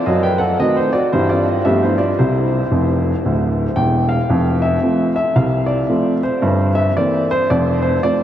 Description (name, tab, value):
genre	jazz, stride piano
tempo	113 BPM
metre	4/4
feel	swing 61% on 8ths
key	C major, F major from 4.3 s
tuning	A4 = 435 Hz
part	warm upright piano	solo	0.0-8.2 s	D1 to G5	-14 LUFS	equal	diffuse ambient delay
room	wet huge ambient reverb, RT60 8.0 s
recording	dreamy mix soaked in reverb, cassette tape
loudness	-14 LUFS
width	side -11 dB against mid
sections	0.0-4.3 A section; 4.3-8.2 B section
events	upright piano fill 2.7-4.3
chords	0.1 F#dim7; 1.1 C/G; 1.7 G9; 2.2 C; 4.3 F; 6.4 C7/G; 7.5 F